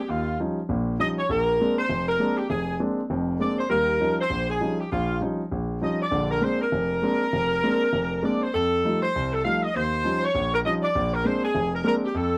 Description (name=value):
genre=jazz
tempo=199 BPM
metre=4/4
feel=swing 61% on 8ths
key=Bb mixolydian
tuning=A4 = 440 Hz
part: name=warm saxophone section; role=melody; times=0.0-12.4 s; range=F4 to F5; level=-27 LUFS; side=equal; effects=none
part: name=warm grand piano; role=accompaniment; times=0.1-12.4 s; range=F1 to Eb4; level=-28 LUFS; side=equal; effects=none
room=light reverb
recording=close, detailed microphones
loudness=-25 LUFS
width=mono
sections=0.0-12.4 A section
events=none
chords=0.1 Eb9; 1.3 Bb9; 3.7 Eb9; 6.1 Bb9; 8.5 F9; 9.7 Eb9; 10.9 Bb9